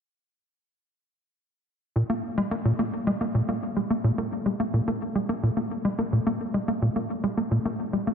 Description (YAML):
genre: ambient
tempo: 108 BPM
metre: 4/4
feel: straight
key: unclear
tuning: A4 = 440 Hz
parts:
  - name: tight sequencer bass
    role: solo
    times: 2.0-8.1 s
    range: A#2 to A#3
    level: -24 LUFS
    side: equal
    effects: analog chorus, ping-pong delay
room: wet plate reverb, RT60 3.2 s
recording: dark, warm production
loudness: -24 LUFS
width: side -7 dB against mid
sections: 2.0-8.1 A section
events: none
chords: none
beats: | 1.96 2.52 3.07 3.63 | 4.18 4.74 5.29 5.85 | 6.40 6.96 7.51 8.07